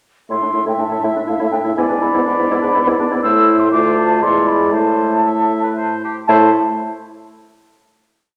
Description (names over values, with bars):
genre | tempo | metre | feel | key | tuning
quick classical-period movement for wind quintet | 121 BPM | 3/4 | straight | A minor | A4 = 440 Hz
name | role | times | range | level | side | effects
mellow hollow silver concert flute | melody | 0.3-6.6 s | E5 to E6 | -20 LUFS | equal | none
warm oboe | second line | 0.3-6.5 s | G4 to E5 | -26 LUFS | equal | none
warm French horn | accompaniment | 0.3-6.5 s | G#3 to B3 | -23 LUFS | equal | none
warm clarinet | accompaniment | 0.3-6.5 s | D4 to F4 | -22 LUFS | equal | none
warm bassoon | bass | 0.3-6.5 s | D2 to A2 | -26 LUFS | equal | none
room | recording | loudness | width
wet recital hall reverb, RT60 1.5 s | none | -16 LUFS | mono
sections
0.3-6.3 A section; 6.3-7.8 final chord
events
none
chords
0.3 A5; 1.8 E7/G#; 3.2 Am; 3.7 Dm7; 4.2 E7; 4.7 Am; 6.3 A5